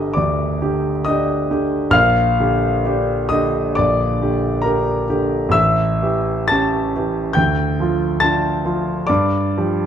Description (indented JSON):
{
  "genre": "classical, romantic nocturne for solo piano",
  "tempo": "57-72 BPM",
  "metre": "4/4",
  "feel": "rubato",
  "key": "G minor",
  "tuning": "A4 = 440 Hz",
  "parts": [
    { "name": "warm concert grand piano", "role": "solo", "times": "0.0-9.9 s", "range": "G1 to A6", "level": "-16 LUFS", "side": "equal", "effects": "none" }
  ],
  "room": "moderate recital hall reverb, RT60 1.4 s",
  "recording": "dark, warm production",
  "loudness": "-16 LUFS",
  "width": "side -9 dB against mid",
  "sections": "0.0-9.9 A section",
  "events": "none",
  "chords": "0.0 Gm; 2.0 Gm/Bb; 5.5 A7; 7.4 Dm; 9.1 G7(no3)"
}